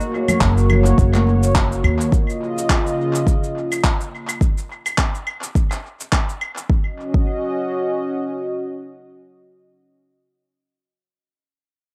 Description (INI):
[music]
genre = organic downtempo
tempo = 105 BPM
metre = 4/4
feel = swing 56% on 16ths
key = Eb minor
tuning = A4 = 438 Hz
[part]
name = warm analog pad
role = sustained chords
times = 0.0-9.7 s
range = Db3 to Eb5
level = -24 LUFS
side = equal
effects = chorus, sidechain pumping
[part]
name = electronic shaker, claves and handclaps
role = drums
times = 0.0-6.7 s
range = none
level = -27 LUFS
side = equal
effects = overdrive, analog delay
[part]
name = congas and bongos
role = percussion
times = 0.3-1.4 s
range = none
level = -27 LUFS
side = equal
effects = none
[part]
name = upright bass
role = bass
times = 0.4-2.1 s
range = Gb1 to Eb2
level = -18 LUFS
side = equal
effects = sidechain pumping
[part]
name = electronic kick drum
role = drums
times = 0.4-7.3 s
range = none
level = -21 LUFS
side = equal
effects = none
[sound]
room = moderate spring reverb, RT60 1.3 s, studio ambience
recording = echo-heavy mix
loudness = -19 LUFS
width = mono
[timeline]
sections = 0.0-6.7 A section; 6.7-9.0 B section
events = none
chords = 0.0 Gb; 2.1 Db69; 4.4 N.C.; 6.7 Ebm7